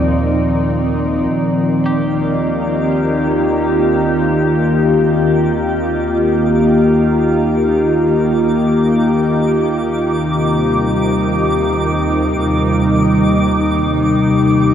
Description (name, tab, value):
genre	ambient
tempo	free time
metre	none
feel	none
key	Eb major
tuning	A4 = 437 Hz
part	glassy FM pad	sustained chords	0.0-14.7 s	Bb2 to D5	-14 LUFS	equal	ensemble chorus, built-in reverb
part	dark chamber double bass section	bass	0.0-14.7 s	Eb2	-25 LUFS	equal	none
part	bowed-like drone	drone	0.0-14.7 s	Eb3 to Eb4	-20 LUFS	equal	built-in reverb
part	twinkling granular texture	texture	2.0-14.7 s	D6	-26 LUFS	right 2 dB	built-in reverb
part	semi-hollow electric guitar	arpeggios	1.9-3.3 s	G4	-34 LUFS	equal	none
room	wet huge ambient reverb, RT60 7.9 s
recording	dark, warm production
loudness	-12 LUFS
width	side -9 dB against mid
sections	0.0-1.3 A section; 1.3-14.7 B section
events	fade-in on double bass section 1.3-14.7; fade-in on synth texture 1.3-14.7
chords	0.0 Ebmaj7